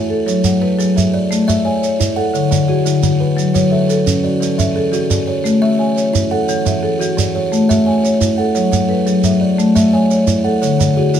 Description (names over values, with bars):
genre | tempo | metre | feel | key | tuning
southern african traditional, mbira-style interlocking cycle | 116 BPM (dotted quarters) | 12/8 | straight | A major | A4 = 440 Hz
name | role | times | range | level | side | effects
buzzing kalimba | arpeggios | 0.0-11.2 s | D3 to F#5 | -18 LUFS | right 3 dB | none
marimba with medium mallets | arpeggios | 0.0-11.2 s | D3 to G#5 | -15 LUFS | left 3 dB | none
shekere | percussion | 0.3-11.2 s | none | -21 LUFS | right 3 dB | none
room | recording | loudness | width
wet studio reverb, RT60 0.9 s | band playing live in one room | -12 LUFS | side -9 dB against mid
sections
0.0-11.2 A section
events
none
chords
0.3 F#m; 1.3 A; 2.3 D; 3.4 F#m; 4.4 E; 5.5 A; 6.5 E; 7.5 A; 8.6 F#m; 9.6 A; 10.6 D